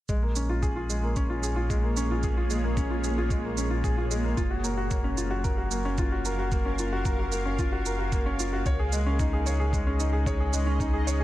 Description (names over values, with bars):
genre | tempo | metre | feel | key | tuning
piano and strings electronica | 112 BPM | 4/4 | straight | Bb minor | A4 = 441 Hz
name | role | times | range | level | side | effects
granular cloud pad | sustained chords | 1.4-11.2 s | Gb3 to F5 | -35 LUFS | right 1 dB | built-in reverb, sidechain pumping
clear upright piano | riff | 0.1-11.2 s | Ab3 to Db5 | -30 LUFS | left 1 dB | tape echo
warm sub bass | bass | 0.1-11.2 s | Gb1 to Db2 | -29 LUFS | equal | sidechain pumping
electronic kick drum | drums | 0.1-10.9 s | none | -29 LUFS | equal | none
shaker | drums | 0.1-11.2 s | none | -37 LUFS | right 8 dB | none
room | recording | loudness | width
light reverb | none | -25 LUFS | side -15 dB against mid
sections
0.1-11.2 A section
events
none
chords
0.1 Bbm7; 4.4 Gbmaj7; 8.7 Dbsus2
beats
| 0.09 0.63 1.16 1.70 | 2.23 2.77 3.31 3.84 | 4.38 4.91 5.45 5.98 | 6.52 7.05 7.59 8.13 | 8.66 9.20 9.73 10.27 | 10.80